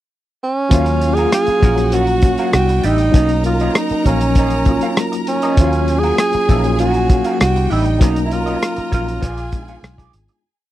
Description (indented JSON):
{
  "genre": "lush 1970s-style soul",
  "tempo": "99 BPM",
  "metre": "4/4",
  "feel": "straight",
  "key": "Eb minor",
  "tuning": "A4 = 439 Hz",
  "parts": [
    { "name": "breathy tenor saxophone", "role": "melody", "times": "0.4-10.1 s", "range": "Db4 to Ab4", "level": "-18 LUFS", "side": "right 2 dB", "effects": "none" },
    { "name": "rich studio violin section", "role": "second line", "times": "0.7-10.4 s", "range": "G3 to A#5", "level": "-27 LUFS", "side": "left 1 dB", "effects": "tape echo" },
    { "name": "tine electric piano", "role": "accompaniment", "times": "0.7-10.5 s", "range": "F3 to F5", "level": "-21 LUFS", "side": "left 2 dB", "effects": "overdrive, fast stereo tremolo" },
    { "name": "electric guitar through a small old amp", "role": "riff", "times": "0.7-10.3 s", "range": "Cb4 to Gb5", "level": "-27 LUFS", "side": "right 3 dB", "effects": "wah" },
    { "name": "vintage muted fingered electric bass", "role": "bass", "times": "0.7-10.3 s", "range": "Ab1 to Eb2", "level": "-19 LUFS", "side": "equal", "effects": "none" },
    { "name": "warm soul drum kit", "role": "drums", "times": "0.7-10.4 s", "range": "hi-hat, kick drum, rim click", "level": "-15 LUFS", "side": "equal", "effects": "none" }
  ],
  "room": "little or no reverb",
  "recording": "dry, close 1970s-style studio recording",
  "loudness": "-13 LUFS",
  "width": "side -14 dB against mid",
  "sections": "0.0-0.7 pickup bar; 0.7-10.4 verse",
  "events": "fade-out 8.0-10.4",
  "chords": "0.0 N.C.; 0.7 Ebm9; 2.5 Cmaj9; 3.1 Bmaj9; 5.6 Ebm9; 7.4 Cmaj9; 8.0 Bmaj9; 9.2 Bb7b9"
}